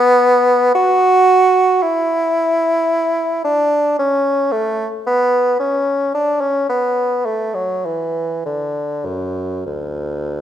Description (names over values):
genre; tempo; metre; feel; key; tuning
classical, baroque-style fantasia for unaccompanied bassoon; 49-56 BPM; 3/4; rubato; D major; A4 = 440 Hz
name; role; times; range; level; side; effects
warm bassoon; solo; 0.0-10.4 s; D2 to F#4; -14 LUFS; equal; none
room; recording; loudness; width
moderate recital hall reverb, RT60 1.4 s; none; -14 LUFS; side -10 dB against mid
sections
0.0-10.4 A section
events
none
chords
none